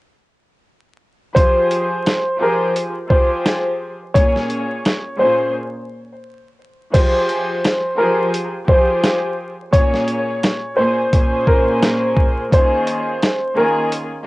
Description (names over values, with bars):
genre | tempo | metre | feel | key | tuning
hip hop, boom-bap hip-hop | 86 BPM | 4/4 | swing 58% on 16ths | F minor | A4 = 440 Hz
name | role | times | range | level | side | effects
warm upright piano | melody | 1.3-13.9 s | Bb4 to Db5 | -19 LUFS | equal | high-pass filter, low-pass filter, cassette tape
rich studio string section | accompaniment | 1.3-14.3 s | Bb2 to Db5 | -20 LUFS | equal | high-pass filter, low-pass filter, cassette tape
dusty soul sampler-style drum kit | drums | 1.4-14.1 s | crash cymbal, hi-hat, kick drum, snare drum | -16 LUFS | equal | cassette tape
room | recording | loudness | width
light reverb | home recording on cassette, vinyl crackle, nothing above 10.4 kHz | -15 LUFS | side -20 dB against mid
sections
1.4-6.9 A section; 6.9-14.3 B section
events
break 5.5-6.9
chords
1.4 Fmadd9; 4.2 Bbm7; 6.9 Fmadd9; 9.7 Bbm7; 12.5 Eb7sus4